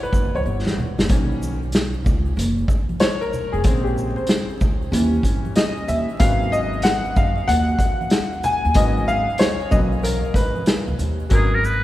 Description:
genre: hip hop, jazz-hop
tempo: 94 BPM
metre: 4/4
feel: swing 65% on 16ths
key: unclear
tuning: A4 = 440 Hz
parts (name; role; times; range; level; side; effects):
- clear upright piano; accompaniment; 0.0-11.6 s; A#2 to G#5; -23 LUFS; left 2 dB; none
- tube shaker and congas; percussion; 0.0-11.3 s; none; -35 LUFS; right 1 dB; none
- upright bass; bass; 0.1-11.8 s; E1 to G2; -23 LUFS; equal; none
- vintage drum kit; drums; 0.1-11.8 s; hi-hat, kick drum, shaker, snare drum; -21 LUFS; equal; none
- trumpet with metal mute; melody; 11.3-11.8 s; G#4 to B4; -20 LUFS; right 1 dB; none
room: moderate cathedral reverb, RT60 6.7 s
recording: recorded in a church or concert hall, vinyl crackle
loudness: -17 LUFS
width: side -15 dB against mid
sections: 0.0-11.3 A section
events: upright piano solo 0.0-11.3; drum fill 0.5-1.1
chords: 0.0 F#7b9; 1.1 Bmaj9; 3.6 A#m9; 4.9 D#7b9; 6.2 G#m11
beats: 0.46 | 1.09 1.73 2.37 3.01 | 3.65 4.29 4.92 5.56 | 6.20 6.84 7.48 8.12 | 8.75 9.39 10.03 10.67 | 11.31

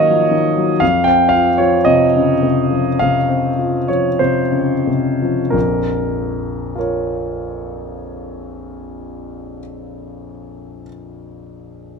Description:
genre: classical, impressionist solo piano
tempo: 43-62 BPM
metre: 4/4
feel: rubato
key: Bb minor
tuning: A4 = 441 Hz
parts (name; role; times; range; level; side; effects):
- warm concert grand piano; solo; 0.0-12.0 s; Bb1 to G5; -15 LUFS; equal; none
room: light reverb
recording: minimal, uncompressed stereo recording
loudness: -14 LUFS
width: side -5 dB against mid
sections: 0.0-5.5 A section; 5.5-10.4 B section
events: slowing down 0.0-5.5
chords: 0.0 Ab9sus4; 0.8 F5; 5.5 Bbm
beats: | 0.81 1.87 3.01 4.21 | 5.54 6.76 7.99 9.21

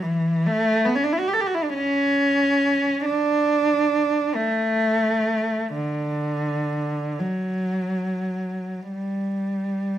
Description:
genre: classical, free, expressive piece for unaccompanied cello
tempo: 31-48 BPM (dotted quarters)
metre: 6/8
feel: rubato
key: unclear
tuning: A4 = 443 Hz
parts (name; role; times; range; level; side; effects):
- warm cello; solo; 0.0-10.0 s; D3 to A4; -20 LUFS; right 1 dB; none
room: moderate recital hall reverb, RT60 1.3 s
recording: close, detailed microphones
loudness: -20 LUFS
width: side -11 dB against mid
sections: 0.0-10.0 A section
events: none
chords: none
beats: | 0.47 1.72 | 3.05 4.35 | 5.72 7.19 | 8.93

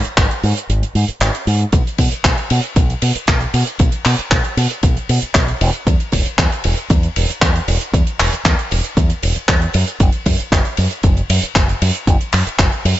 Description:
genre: nu-disco, nu disco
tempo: 116 BPM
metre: 4/4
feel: straight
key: unclear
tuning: A4 = 441 Hz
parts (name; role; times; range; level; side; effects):
- fingered electric bass with an envelope filter; bass; 0.1-12.9 s; E1 to B2; -17 LUFS; equal; none
- damped 70s drum kit; drums; 0.1-13.0 s; handclaps, hi-hat, ride cymbal; -19 LUFS; equal; none
- electronic kick drum; drums; 0.2-12.7 s; none; -15 LUFS; equal; overdrive
room: little or no reverb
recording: nothing above 7.8 kHz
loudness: -14 LUFS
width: side -14 dB against mid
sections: 0.0-13.0 A section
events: kick drops out 0.7-1.7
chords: none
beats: 0.18 0.69 1.21 | 1.73 2.25 2.76 3.28 | 3.80 4.32 4.83 5.35 | 5.87 6.38 6.90 7.42 | 7.94 8.45 8.97 9.49 | 10.01 10.52 11.04 11.56 | 12.07 12.59

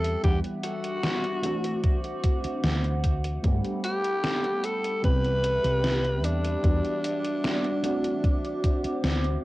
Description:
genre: vaporwave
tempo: 75 BPM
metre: 4/4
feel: straight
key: unclear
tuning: A4 = 441 Hz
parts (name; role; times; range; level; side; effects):
- growling alto saxophone; melody; 0.0-9.4 s; D4 to B4; -29 LUFS; equal; vintage 12-bit sampler grit, cassette tape, tape echo
- mellow FM electric piano; accompaniment; 0.0-9.4 s; E3 to F#5; -32 LUFS; equal; ensemble chorus, cassette tape, tape echo
- warbly tape-like pad; sustained chords; 0.0-9.4 s; G3 to D6; -37 LUFS; equal; chorus, built-in reverb, cassette tape
- woody fretless electric bass; bass; 0.0-9.3 s; G1 to E2; -27 LUFS; equal; tube saturation, analog chorus
- gated 80s digital drum machine; drums; 0.0-9.4 s; hi-hat, snare drum; -32 LUFS; equal; gated reverb, gated reverb snare, cassette tape
- electronic kick drum; drums; 0.2-8.8 s; none; -24 LUFS; equal; cassette tape
room: moderate booth ambience, RT60 0.2 s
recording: home recording on cassette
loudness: -24 LUFS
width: side -18 dB against mid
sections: 0.0-9.4 A section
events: none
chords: 0.2 Em9; 1.4 D9; 3.4 Gmaj9; 5.0 Cmaj7; 6.6 Em9; 7.8 D9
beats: | 0.24 1.04 1.84 2.64 | 3.44 4.24 5.04 5.84 | 6.64 7.44 8.24 9.04

